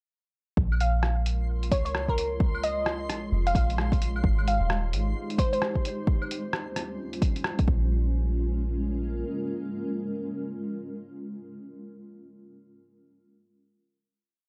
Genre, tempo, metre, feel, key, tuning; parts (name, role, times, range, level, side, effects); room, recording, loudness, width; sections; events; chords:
future garage; 131 BPM; 4/4; swing 62% on 16ths; Bb dorian; A4 = 439 Hz
granular cloud pad; sustained chords; 1.3-11.6 s; Eb2 to Db5; -37 LUFS; equal; built-in reverb, sidechain pumping
soft 808-style bass; bass; 0.6-9.2 s; Eb1 to Db2; -29 LUFS; equal; sidechain pumping
electronic kick drum; drums; 0.6-7.8 s; -27 LUFS; equal; overdrive
backwards swelling texture; texture; 1.4-6.1 s; C6; -48 LUFS; equal; built-in reverb
lo-fi sampler-style drum kit; drums; 0.7-7.7 s; claves, hi-hat, rim click; -36 LUFS; equal
glassy wavetable pluck; melody; 0.8-5.6 s; Bb4 to F5; -33 LUFS; equal; chorus, analog delay
little or no reverb; dry, gritty hardware recording; -28 LUFS; mono
0.6-7.9 groove; 7.9-11.6 final hit
0.6 Bbm7; 4.2 Abmaj7; 6.1 Eb13; 7.7 Bbm7